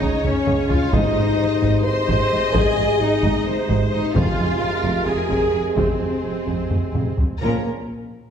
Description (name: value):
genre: cinematic, epic orchestral film score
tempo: 261 BPM (eighths)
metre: 7/8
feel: straight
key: unclear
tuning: A4 = 440 Hz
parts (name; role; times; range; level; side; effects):
- warm symphonic violin section; melody; 0.0-7.7 s; C5 to C6; -31 LUFS; left 4 dB; none
- rich symphonic violin section; second line; 0.0-7.7 s; Db4 to Eb5; -29 LUFS; left 2 dB; none
- rich symphonic viola section; accompaniment; 0.0-7.7 s; C4 to C5; -27 LUFS; right 2 dB; none
- mellow French horn section; sustained chords; 0.0-7.6 s; Bb3 to C5; -23 LUFS; left 3 dB; none
- warm trombone section; sustained chords; 0.0-7.6 s; C3 to Ab3; -28 LUFS; right 4 dB; none
- rich symphonic double bass section; bass; 0.0-7.7 s; F1 to Db2; -27 LUFS; right 2 dB; none
- warm symphonic cello section; bass; 0.0-7.7 s; F2 to Db3; -27 LUFS; right 2 dB; none
- taiko ensemble; drums; 0.0-7.4 s; none; -24 LUFS; equal; none
- timpani; percussion; 4.1-4.8, 7.4-7.6 s; F2 to Bb2; -31 LUFS; left 1 dB; none
room: wet recital hall reverb, RT60 1.6 s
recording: heard from further back in the room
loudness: -17 LUFS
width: side -8 dB against mid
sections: 0.0-7.4 A section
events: drum fill 0.2-0.9, 6.7-7.4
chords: 0.0 Db; 0.9 Ab; 4.1 Fm; 7.4 Bbm